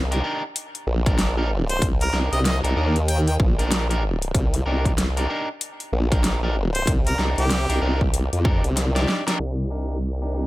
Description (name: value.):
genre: glitch hop.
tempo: 95 BPM.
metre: 4/4.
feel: swing 61% on 16ths.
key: C minor.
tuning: A4 = 441 Hz.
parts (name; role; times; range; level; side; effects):
formant-sweep wobble bass; bass; 0.0-10.5 s; Bb1 to F2; -22 LUFS; equal; chorus, tube saturation.
electric guitar at the edge of break-up; stabs; 0.1-10.5 s; D4 to D5; -29 LUFS; equal; sidechain pumping, dub echo.
dubstep drum kit; drums; 0.1-10.3 s; hi-hat, rim click, snare drum; -26 LUFS; equal; none.
electronic kick drum; drums; 1.1-8.6 s; none; -21 LUFS; equal; none.
clear harmonica; melody; 1.7-7.8 s; G4 to G5; -29 LUFS; equal; dub echo.
room: little or no reverb.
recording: low-pass filter.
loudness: -20 LUFS.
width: side -18 dB against mid.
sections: 0.0-9.4 A section; 9.4-10.5 B section.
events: drum fill 8.8-9.4; band accent 9.2-9.6; filter sweep 9.4-10.5.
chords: 0.0 Cm7.